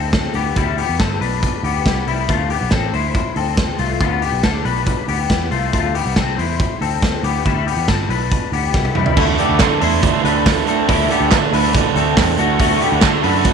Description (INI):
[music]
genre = jangly indie pop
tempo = 139 BPM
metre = 4/4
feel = straight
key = unclear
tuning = A4 = 440 Hz
[part]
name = electric guitar through a small old amp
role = arpeggios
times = 0.0-13.5 s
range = G3 to C5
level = -20 LUFS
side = left 13 dB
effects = ensemble chorus, tape echo
[part]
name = picked electric bass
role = bass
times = 0.0-13.5 s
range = G1 to D3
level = -22 LUFS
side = right 1 dB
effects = none
[part]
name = raw garage drum kit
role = drums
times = 0.1-13.5 s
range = crash cymbal, hi-hat, kick drum, snare drum, toms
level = -19 LUFS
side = right 1 dB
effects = none
[part]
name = crunchy overdriven guitar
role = accompaniment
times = 9.2-13.5 s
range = D3 to A4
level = -17 LUFS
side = right 16 dB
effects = none
[part]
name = group handclap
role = percussion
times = 9.6-13.1 s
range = none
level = -22 LUFS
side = right 16 dB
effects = none
[sound]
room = light reverb, small room ambience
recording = 1960s-style stereo with parts hard left and right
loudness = -14 LUFS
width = side -6 dB against mid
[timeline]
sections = 0.0-9.2 A section; 9.2-13.5 B section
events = drum fill 8.7-9.2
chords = 0.3 Cmaj7; 2.3 Dm7; 4.0 G7; 5.7 Fmaj7; 7.2 Cmaj7; 9.2 Dsus2; 12.4 D